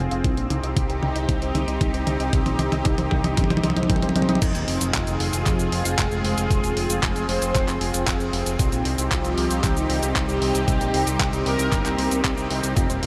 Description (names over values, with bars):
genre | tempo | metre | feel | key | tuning
italo disco | 115 BPM | 4/4 | straight | F minor | A4 = 445 Hz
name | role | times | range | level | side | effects
lush unison pad | sustained chords | 0.0-13.1 s | F3 to Ab4 | -29 LUFS | equal | chorus, phaser
soft round pluck | arpeggios | 0.0-4.4, 12.8-13.1 s | Eb4 to F5 | -36 LUFS | equal | chorus, tape echo
fat analog bass | bass | 0.0-13.1 s | Eb1 to C2 | -28 LUFS | equal | none
detuned 8-bit digital drum machine | drums | 0.1-13.1 s | cabasa, crash cymbal, handclaps, hi-hat, toms | -29 LUFS | equal | none
electronic kick drum | drums | 0.2-12.9 s | none | -27 LUFS | equal | none
mellow synth brass | melody | 4.9-12.2 s | Eb3 to C5 | -30 LUFS | equal | chorus, delay
room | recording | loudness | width
moderate huge ambient reverb, RT60 8.3 s | dreamy mix soaked in reverb | -22 LUFS | mono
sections
0.0-4.4 A section; 4.4-13.1 B section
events
drum fill 0.0-4.4; filter sweep on synth arpeggio sound 0.0-4.4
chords
0.2 Cm; 4.4 Fm; 8.6 Cm